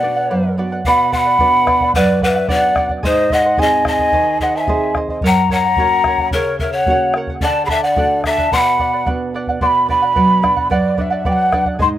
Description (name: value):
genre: andean folk, Andean ensemble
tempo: 110 BPM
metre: 2/4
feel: straight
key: B dorian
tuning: A4 = 440 Hz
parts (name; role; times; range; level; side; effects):
- breathy mellow quena; melody; 0.0-11.9 s; C#5 to C6; -16 LUFS; right 1 dB; slapback echo
- breathy bright large pan pipes; second line; 0.0-9.1 s; G#4 to F#5; -18 LUFS; left 3 dB; none
- charango; accompaniment; 0.0-12.0 s; G#4 to F#5; -23 LUFS; right 3 dB; slapback echo
- nylon-string guitar; accompaniment; 0.0-12.0 s; F#2 to G#4; -21 LUFS; right 2 dB; none
- bombo; percussion; 0.8-11.9 s; none; -23 LUFS; equal; none
room: light reverb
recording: recorded outdoors, with no room sound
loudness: -13 LUFS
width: side -12 dB against mid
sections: 0.8-9.6 A section; 9.6-12.0 A section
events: break 0.0-0.8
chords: 0.0 Bm; 3.0 G#; 5.2 F#; 7.4 D; 8.5 Bm